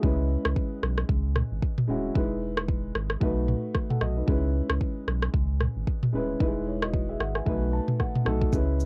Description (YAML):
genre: afrobeats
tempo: 113 BPM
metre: 4/4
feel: swing 58% on 16ths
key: C# minor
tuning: A4 = 438 Hz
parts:
  - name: dark grand piano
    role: accompaniment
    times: 0.0-8.9 s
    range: G3 to A5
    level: -33 LUFS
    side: equal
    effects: cassette tape
  - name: saturated sub bass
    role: bass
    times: 0.0-8.9 s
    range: D#1 to C#2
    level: -30 LUFS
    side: equal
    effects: none
  - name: afro-pop drum kit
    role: drums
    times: 0.0-8.9 s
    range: kick drum, rim click, shaker, toms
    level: -30 LUFS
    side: equal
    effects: cassette tape
room: light reverb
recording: home recording on cassette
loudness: -27 LUFS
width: mono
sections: 0.0-8.9 A section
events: break 0.0-8.5; grand piano fill 7.5-8.5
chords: 0.0 C#m7; 2.2 Emaj7; 3.2 B7; 4.3 C#m7; 6.4 Emaj7; 7.5 B7